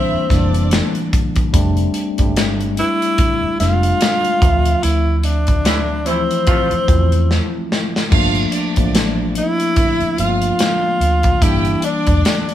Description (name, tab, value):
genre	lush 1970s-style soul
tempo	73 BPM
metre	4/4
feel	swing 58% on 16ths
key	G dorian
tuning	A4 = 444 Hz
part	breathy tenor saxophone	melody	0.0-12.5 s	C4 to F4	-18 LUFS	equal	none
part	warm symphonic violin section	second line	0.0-1.1, 8.1-12.5 s	D4 to G5	-25 LUFS	right 1 dB	none
part	mellow tine electric piano	accompaniment	0.0-12.5 s	E3 to E5	-21 LUFS	left 2 dB	medium stereo tremolo
part	vintage muted fingered electric bass	bass	0.1-12.2 s	E1 to E2	-18 LUFS	right 1 dB	none
part	modern studio drum kit	drums	0.3-12.5 s	crash cymbal, hi-hat, kick drum, snare drum	-18 LUFS	equal	none
part	warm horn section	stabs	5.7-6.7 s	C3 to F4	-24 LUFS	right 2 dB	none
room	light reverb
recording	band playing live in one room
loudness	-14 LUFS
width	side -12 dB against mid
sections	0.0-12.5 A section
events	band accent 4.8-8.1; drum fill 7.3-8.1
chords	0.0 C9; 1.5 F6; 4.4 Dm9; 8.1 Gm7; 11.4 C9 (rootless)